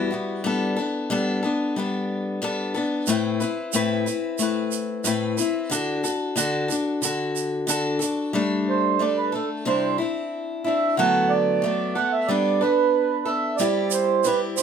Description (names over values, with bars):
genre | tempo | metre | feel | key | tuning
acoustic folk duo or small band | 91 BPM | 4/4 | straight | G major | A4 = 441 Hz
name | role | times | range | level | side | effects
picked steel-string acoustic guitar | accompaniment | 0.0-14.6 s | E2 to B4 | -23 LUFS | left 3 dB | none
tube shaker | percussion | 3.1-8.2, 13.6-14.6 s | none | -28 LUFS | right 9 dB | none
mellow accordion | second line | 8.7-14.6 s | A4 to F#5 | -21 LUFS | right 7 dB | none
room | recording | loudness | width
moderate studio reverb, RT60 0.5 s | none | -21 LUFS | side -7 dB against mid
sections
0.0-8.3 A section; 8.3-14.6 B section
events
accordion solo 8.3-14.6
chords
0.4 Gadd9; 3.1 Amadd9; 5.7 D; 8.3 Gsus2; 9.7 Cadd9; 11.0 D6; 12.3 Gadd9; 13.6 C/G